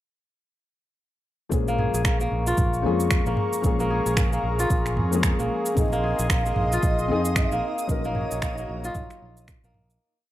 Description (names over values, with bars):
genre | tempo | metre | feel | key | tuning
organic downtempo | 113 BPM | 4/4 | swing 59% on 16ths | Bb minor | A4 = 442 Hz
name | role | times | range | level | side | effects
felt-muted upright piano | accompaniment | 1.5-9.3 s | F3 to Bb4 | -29 LUFS | left 5 dB | sidechain pumping, ping-pong delay, plate reverb
warm analog pad | sustained chords | 1.5-10.0 s | Gb3 to Eb6 | -32 LUFS | equal | chorus, vintage 12-bit sampler grit, sidechain pumping, plate reverb
fretless electric bass | bass | 1.5-10.0 s | Bb1 to F2 | -28 LUFS | right 1 dB | sidechain pumping
electronic kick drum | drums | 1.5-9.6 s | none | -25 LUFS | right 1 dB | none
organic electronic drum kit | drums | 1.5-10.0 s | finger snaps, shaker, toms | -29 LUFS | right 1 dB | none
kora | arpeggios | 1.7-10.3 s | Bb3 to Ab4 | -29 LUFS | equal | ping-pong delay, plate reverb
breathy mellow low ney | melody | 5.8-9.4 s | Eb5 to F5 | -30 LUFS | right 2 dB | ping-pong delay, plate reverb
twinkling granular texture | texture | 6.2-10.0 s | Eb4 to Eb5 | -39 LUFS | right 1 dB | built-in reverb, plate reverb
room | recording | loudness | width
light reverb | rough home demo mix | -21 LUFS | side -14 dB against mid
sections
1.5-10.0 groove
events
fade-out 7.2-10.0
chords
1.5 Bbm7; 5.8 Ab/Bb; 7.9 Gb6/Bb